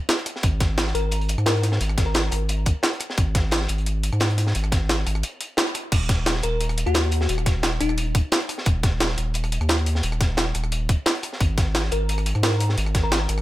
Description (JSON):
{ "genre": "liquid drum and bass", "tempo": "175 BPM", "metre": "4/4", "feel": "straight", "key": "unclear", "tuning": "A4 = 441 Hz", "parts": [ { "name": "crunchy breakbeat drum kit", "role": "drums", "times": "0.1-13.4 s", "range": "hi-hat, snare drum", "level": "-29 LUFS", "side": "equal", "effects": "high-pass filter on hats, small room ambience, high-pass filter on snare, high-pass filter on room" }, { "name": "jungle sampler-style drum kit", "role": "drums", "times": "0.1-13.4 s", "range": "crash cymbal, hi-hat, rim click, snare drum", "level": "-25 LUFS", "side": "equal", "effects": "small room ambience" }, { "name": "saturated sub bass", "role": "bass", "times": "0.4-13.4 s", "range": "Eb1 to Ab2", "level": "-23 LUFS", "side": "equal", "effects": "none" }, { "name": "electronic kick drum", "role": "drums", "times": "0.4-13.0 s", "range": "none", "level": "-20 LUFS", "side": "equal", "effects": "overdrive, small room ambience" }, { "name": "bell-like FM electric piano", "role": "melody", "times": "0.9-2.4, 6.4-8.1, 11.9-13.4 s", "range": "Eb4 to Bb4", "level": "-29 LUFS", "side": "left 3 dB", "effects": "chorus, phaser, cassette tape, digital delay" } ], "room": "small room ambience", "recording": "none", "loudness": "-20 LUFS", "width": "side -16 dB against mid", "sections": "0.0-5.9 A section; 5.9-13.4 A section", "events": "drop 0.0-5.9, 5.9-13.4; break 5.2-5.9; band accent 5.6", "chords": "0.4 N.C.; 11.4 Absus2" }